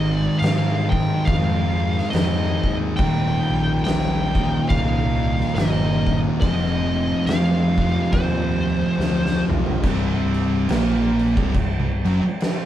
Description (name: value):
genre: stoner and doom metal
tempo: 70 BPM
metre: 4/4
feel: swing 59% on 8ths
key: C minor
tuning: A4 = 438 Hz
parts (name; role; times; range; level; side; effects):
- fuzz lead guitar; melody; 0.0-9.4 s; C5 to G5; -27 LUFS; equal; distortion
- deep rumbling drone; sustained chords; 0.3-12.7 s; Eb3 to G5; -34 LUFS; left 1 dB; none
- distorted electric guitar; riff; 0.0-12.2 s; C2 to Ab4; -28 LUFS; right 1 dB; distortion
- thick fuzz guitar; riff; 0.0-12.3 s; C2 to Bb3; -25 LUFS; left 5 dB; distortion
- thick fuzz guitar; riff; 0.0-12.3 s; C2 to Bb3; -25 LUFS; right 4 dB; distortion
- overdriven picked electric bass; bass; 0.0-12.3 s; C1 to Ab2; -25 LUFS; equal; none
- oversized low-tuned drum kit; drums; 0.4-12.6 s; crash cymbal, kick drum, snare drum, toms; -24 LUFS; equal; none
room: moderate studio reverb, RT60 0.8 s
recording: band playing live in one room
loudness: -18 LUFS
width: side -12 dB against mid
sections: 0.0-9.8 A section; 9.8-12.7 B section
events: drum fill 9.0-9.8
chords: 0.0 Ab; 3.0 Eb; 6.4 Fm; 9.8 C5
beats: 0.42 1.28 2.14 | 2.99 3.85 4.71 5.56 | 6.42 7.28 8.13 8.99 | 9.84 10.70 11.55 12.40